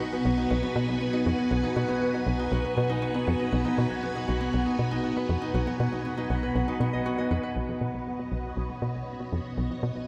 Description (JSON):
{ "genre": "ambient", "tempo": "119 BPM", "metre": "4/4", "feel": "straight", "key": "B major", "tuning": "A4 = 441 Hz", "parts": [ { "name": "string machine, full ensemble", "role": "sustained chords", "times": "0.0-10.1 s", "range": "B3 to G#5", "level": "-34 LUFS", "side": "equal", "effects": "phaser, ensemble chorus" }, { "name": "Celtic harp", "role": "arpeggios", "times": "0.0-9.9 s", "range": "B3 to D#5", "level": "-33 LUFS", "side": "equal", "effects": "tape echo" }, { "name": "tight sequencer bass", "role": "riff", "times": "0.3-9.9 s", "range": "B1 to B2", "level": "-32 LUFS", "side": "equal", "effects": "tape echo" } ], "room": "wet cathedral reverb, RT60 6.0 s", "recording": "in a vast, echoing space", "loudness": "-28 LUFS", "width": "mono", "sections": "0.0-7.6 A section; 7.6-10.1 B section", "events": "none", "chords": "0.0 B", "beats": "0.00 0.50 1.01 | 1.51 2.02 2.52 3.02 | 3.53 4.03 4.54 5.04 | 5.54 6.05 6.55 7.06 | 7.56 8.06 8.57 9.07 | 9.58" }